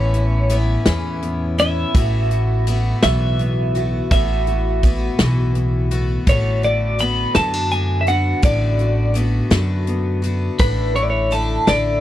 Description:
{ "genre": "indie folk with a building arrangement", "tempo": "56 BPM (dotted quarters)", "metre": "6/8", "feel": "straight", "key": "unclear", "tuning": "A4 = 441 Hz", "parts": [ { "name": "twelve-string electric guitar", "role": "melody", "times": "0.0-12.0 s", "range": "B4 to B5", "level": "-21 LUFS", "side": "equal", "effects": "tremolo" }, { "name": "fingerpicked steel-string acoustic guitar", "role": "accompaniment", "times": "0.0-12.0 s", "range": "A2 to F#4", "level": "-25 LUFS", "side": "left 1 dB", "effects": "none" }, { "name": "picked twelve-string acoustic guitar", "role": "accompaniment", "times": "0.0-12.0 s", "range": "A2 to F#4", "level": "-27 LUFS", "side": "left 6 dB", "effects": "none" }, { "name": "upright bass", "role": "bass", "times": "0.0-12.0 s", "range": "A1 to F#2", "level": "-19 LUFS", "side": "equal", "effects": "none" }, { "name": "natural country drum kit", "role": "drums", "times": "0.1-11.8 s", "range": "hi-hat, kick drum, snare drum", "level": "-18 LUFS", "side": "equal", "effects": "none" } ], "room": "small room ambience", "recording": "dry, close 1970s-style studio recording", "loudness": "-16 LUFS", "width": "side -13 dB against mid", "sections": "0.0-12.0 A section", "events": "none", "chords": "0.0 Aadd9; 1.9 Esus2/A; 6.3 Bm7/A; 10.6 Dsus2/A", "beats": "0.86 | 1.95 3.03 | 4.11 5.19 | 6.28 7.36 | 8.44 9.52 | 10.60 11.68" }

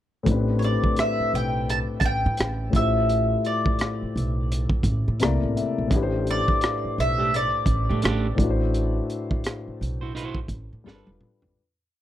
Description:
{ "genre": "R&B, neo-soul", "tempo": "85 BPM", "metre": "4/4", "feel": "swing 61% on 16ths", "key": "A minor", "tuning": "A4 = 440 Hz", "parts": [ { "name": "dark baby grand piano", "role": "accompaniment", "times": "0.2-11.6 s", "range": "A2 to Bb5", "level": "-27 LUFS", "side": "left 4 dB", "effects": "none" }, { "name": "upright bass", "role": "bass", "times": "0.3-11.5 s", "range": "E1 to A2", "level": "-26 LUFS", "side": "right 1 dB", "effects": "none" }, { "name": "crunchy breakbeat drum kit", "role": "drums", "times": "0.3-11.6 s", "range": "hi-hat, kick drum, rim click, snare drum, toms", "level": "-25 LUFS", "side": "right 1 dB", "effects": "none" }, { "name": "mandolin", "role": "melody", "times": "0.6-10.8 s", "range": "C#5 to A5", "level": "-26 LUFS", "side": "equal", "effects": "tape echo" }, { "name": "electric guitar at the edge of break-up", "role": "second line", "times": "7.2-11.1 s", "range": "A3 to C5", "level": "-30 LUFS", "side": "right 5 dB", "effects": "spring reverb" } ], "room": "little or no reverb", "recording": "dry, close 1970s-style studio recording", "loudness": "-21 LUFS", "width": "side -12 dB against mid", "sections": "0.3-11.6 verse", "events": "grand piano fill 4.9-5.9; fade-out 8.7-11.6; drum fill 10.9-11.6", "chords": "0.3 Am11; 2.7 Dm11/A; 5.2 C13; 5.9 Am11; 8.4 D9/A; 10.9 G9", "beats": "| 0.26 0.97 1.68 2.38 | 3.09 3.79 4.50 5.21 | 5.91 6.62 7.32 8.03 | 8.73 9.44 10.15 10.85" }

